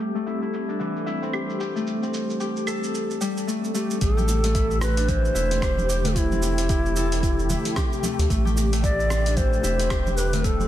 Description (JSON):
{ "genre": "organic downtempo", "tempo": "112 BPM", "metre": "4/4", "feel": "swing 59% on 16ths", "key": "A minor", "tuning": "A4 = 440 Hz", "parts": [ { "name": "warm analog pad", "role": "sustained chords", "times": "0.0-10.7 s", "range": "C3 to A4", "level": "-32 LUFS", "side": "equal", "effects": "chorus, vintage 12-bit sampler grit, sidechain pumping" }, { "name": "Celtic harp", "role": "arpeggios", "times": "0.0-10.7 s", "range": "E3 to A4", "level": "-27 LUFS", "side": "left 3 dB", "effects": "digital delay" }, { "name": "dusty soul sampler-style drum kit", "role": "drums", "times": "0.2-10.7 s", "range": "claves, hi-hat, rim click, shaker", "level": "-32 LUFS", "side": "right 1 dB", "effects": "soft clipping on snare" }, { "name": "mellow low Native American-style wooden flute", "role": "melody", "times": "3.8-10.7 s", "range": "E4 to D5", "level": "-26 LUFS", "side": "right 1 dB", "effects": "digital delay" }, { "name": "warm sub bass", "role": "bass", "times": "4.0-10.7 s", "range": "E1 to D2", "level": "-24 LUFS", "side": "equal", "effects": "sidechain pumping" }, { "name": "electronic kick drum", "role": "drums", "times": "4.0-10.6 s", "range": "none", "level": "-25 LUFS", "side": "equal", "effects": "none" }, { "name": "congas and bongos", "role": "percussion", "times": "4.2-10.7 s", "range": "none", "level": "-33 LUFS", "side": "right 2 dB", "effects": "none" } ], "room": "light reverb, digital ambience", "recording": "dense, heavily limited modern master, low-pass filter", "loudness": "-21 LUFS", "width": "side -12 dB against mid", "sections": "0.0-4.0 A section; 4.0-10.7 B section", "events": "filter sweep on analog synth pad 0.0-4.0; filter sweep 0.0-4.0", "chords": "0.0 Am7" }